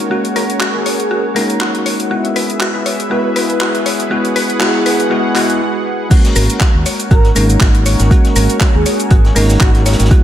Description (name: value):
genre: deep house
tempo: 120 BPM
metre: 4/4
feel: swing 55% on 16ths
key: G# minor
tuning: A4 = 441 Hz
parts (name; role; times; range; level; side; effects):
- warm analog pad; sustained chords; 0.0-10.2 s; E4 to F#5; -23 LUFS; right 1 dB; chorus, tremolo, vintage 12-bit sampler grit, sidechain pumping
- bell-like tine electric piano; stabs; 0.0-10.2 s; G#3 to F#4; -18 LUFS; left 1 dB; sidechain pumping, low-pass filter, diffuse ambient delay
- modern bright fingered electric bass; bass; 0.0-10.1 s; F#1 to D#2; -16 LUFS; equal; sidechain pumping, high-pass filter
- deep house drum kit; drums; 0.0-10.2 s; crash cymbal, handclaps, hi-hat, shaker; -20 LUFS; equal; overdrive, high-pass filter on perc, high-pass filter on hats, high-pass filter on snare, high-pass filter on cymbals, high-pass filter on room
- warbly tape-like pad; texture; 0.0-10.2 s; C#4 to F#5; -25 LUFS; equal; chorus, built-in reverb, sidechain pumping
- mallet-like synth pluck; arpeggios; 0.1-10.2 s; F#4 to C#5; -21 LUFS; left 2 dB; chorus, cassette tape, sidechain pumping, ping-pong delay
- breathy flute-like synth lead; melody; 0.7-9.8 s; F#4 to B4; -23 LUFS; right 2 dB; analog chorus, ping-pong delay
- electronic kick drum; drums; 6.1-10.2 s; none; -10 LUFS; equal; overdrive
- warm soul drum kit; drums; 6.1-10.2 s; hi-hat, snare drum; -28 LUFS; equal; sidechain pumping on hats, high-pass filter on hats, high-pass filter on snare, high-pass filter on room
room: moderate plate reverb, RT60 2.2 s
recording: dreamy mix soaked in reverb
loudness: -11 LUFS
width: side -11 dB against mid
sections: 0.0-6.1 A section; 6.1-10.2 B section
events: build-up 0.0-6.1; break 5.6-6.1; drop 6.1-10.2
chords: 0.0 G#9sus4; 2.1 F#9sus4; 6.1 G#9sus4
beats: | 0.11 0.61 1.11 1.61 | 2.11 2.61 3.11 3.61 | 4.11 4.61 5.11 5.61 | 6.11 6.61 7.11 7.61 | 8.11 8.61 9.11 9.61 | 10.11